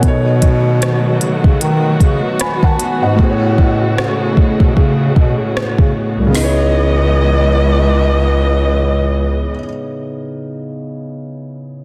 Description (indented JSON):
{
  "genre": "contemporary R&B",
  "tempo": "76 BPM",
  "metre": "4/4",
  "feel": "swing 58% on 16ths",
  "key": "C# minor",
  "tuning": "A4 = 440 Hz",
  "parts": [
    { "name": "felt-muted upright piano", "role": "accompaniment", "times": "0.0-11.8 s", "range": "A2 to B5", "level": "-21 LUFS", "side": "equal", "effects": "none" },
    { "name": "warm studio string section", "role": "sustained chords", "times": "0.0-9.6 s", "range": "C#3 to D#5", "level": "-22 LUFS", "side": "equal", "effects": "none" },
    { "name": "warm bass clarinet", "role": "bass", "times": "0.0-9.6 s", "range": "B#1 to D#3", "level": "-17 LUFS", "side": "equal", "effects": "none" },
    { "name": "smooth R&B drum kit", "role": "drums", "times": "0.0-6.6 s", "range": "hi-hat, kick drum, rim click, snare drum", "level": "-16 LUFS", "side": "equal", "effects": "soft clipping on snare" }
  ],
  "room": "light reverb, studio ambience",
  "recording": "dense, heavily limited modern master",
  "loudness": "-14 LUFS",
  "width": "mono",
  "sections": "0.0-6.3 A section; 6.3-9.5 B section",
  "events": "none",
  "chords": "0.0 B7; 3.2 Amaj13; 6.3 C#m9"
}